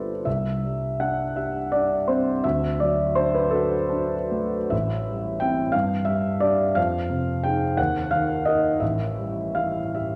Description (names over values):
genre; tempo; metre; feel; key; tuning
classical, impressionist solo piano; 46-62 BPM (dotted quarters); 6/8; rubato; unclear; A4 = 439 Hz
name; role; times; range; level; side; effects
clear concert grand piano; solo; 0.0-10.2 s; G1 to G5; -24 LUFS; equal; none
room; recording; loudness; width
wet recital hall reverb, RT60 1.4 s; none; -24 LUFS; mono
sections
0.0-10.2 A section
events
none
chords
0.3 Cadd9; 2.4 D; 4.7 Am7; 5.7 G5; 6.8 Fm7; 7.8 Eb5; 8.8 A7(no3)